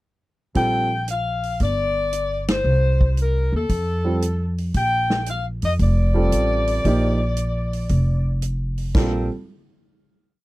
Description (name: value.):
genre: jazz, big band swing.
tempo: 114 BPM.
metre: 4/4.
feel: swing 68% on 8ths.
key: Bb major.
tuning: A4 = 439 Hz.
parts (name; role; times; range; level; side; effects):
clear grand piano; accompaniment; 0.5-0.9, 4.0-9.3 s; F3 to A4; -23 LUFS; right 3 dB; none.
bright saxophone section; melody; 0.6-9.3 s; F3 to G5; -24 LUFS; left 2 dB; none.
upright bass; bass; 0.6-9.3 s; F1 to F2; -21 LUFS; equal; none.
swinging big-band drum kit; drums; 0.6-9.1 s; crash cymbal, hi-hat, kick drum, ride cymbal, snare drum; -23 LUFS; equal; none.
room: little or no reverb.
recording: dry, close 1970s-style studio recording.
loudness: -19 LUFS.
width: side -18 dB against mid.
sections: 0.6-8.9 A section; 8.9-10.4 final chord.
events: band accent 2.4.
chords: 0.6 Bbsus2; 1.6 G5; 2.7 Cm; 3.7 Fadd9; 4.8 Bbmaj9.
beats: | 0.56 1.08 1.61 2.13 | 2.66 3.18 3.71 4.23 | 4.75 5.28 5.80 6.33 | 6.85 7.38 7.90 8.42 | 8.95.